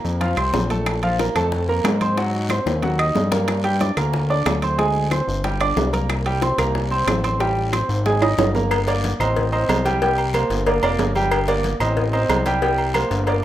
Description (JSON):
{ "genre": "latin, salsa", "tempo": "184 BPM", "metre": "4/4", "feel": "straight", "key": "G minor", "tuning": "A4 = 440 Hz", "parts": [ { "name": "clear grand piano", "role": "accompaniment", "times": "0.0-13.4 s", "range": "F3 to Eb6", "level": "-21 LUFS", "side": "right 2 dB", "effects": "none" }, { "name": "fat analog bass", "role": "bass", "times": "0.0-13.4 s", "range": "F1 to Ab2", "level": "-22 LUFS", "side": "left 1 dB", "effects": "none" }, { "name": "guiro", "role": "percussion", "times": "0.0-13.4 s", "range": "none", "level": "-38 LUFS", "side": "left 4 dB", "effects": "none" }, { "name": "congas", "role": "percussion", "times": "0.1-13.4 s", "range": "none", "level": "-33 LUFS", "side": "left 2 dB", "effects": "none" }, { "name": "bongos and cowbell", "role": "percussion", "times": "0.2-13.4 s", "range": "none", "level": "-27 LUFS", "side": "left 6 dB", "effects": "none" }, { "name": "timbales and agogo bells", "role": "percussion", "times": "0.2-13.4 s", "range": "none", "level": "-26 LUFS", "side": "right 5 dB", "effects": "none" }, { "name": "claves", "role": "percussion", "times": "0.4-13.1 s", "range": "none", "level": "-32 LUFS", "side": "left 4 dB", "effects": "none" } ], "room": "wet studio reverb, RT60 0.6 s", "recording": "rough home demo mix", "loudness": "-18 LUFS", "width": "side -12 dB against mid", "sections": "0.0-8.7 A section; 8.7-13.4 B section", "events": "drum fill 2.5-3.5, 8.2-8.7", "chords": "0.2 F; 0.9 Bbsus2; 2.2 Ab9; 3.5 Gm; 4.8 Abmaj7#11; 5.4 G5; 6.1 C5; 7.4 Abmaj7; 8.1 Absus2; 8.7 Gm; 9.4 Am7b5; 10.0 C5; 10.7 Gm7; 12.0 Am7b5; 12.6 C5", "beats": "0.21 0.54 | 0.86 1.19 1.52 1.84 | 2.17 2.50 2.83 3.15 | 3.48 3.81 4.13 4.46 | 4.79 5.12 5.44 5.77 | 6.10 6.42 6.75 7.08 | 7.40 7.73 8.06 8.38 | 8.71 9.04 9.36 9.69 | 10.01 10.34 10.66 10.99 | 11.32 11.64 11.97 12.29 | 12.62 12.95 13.27" }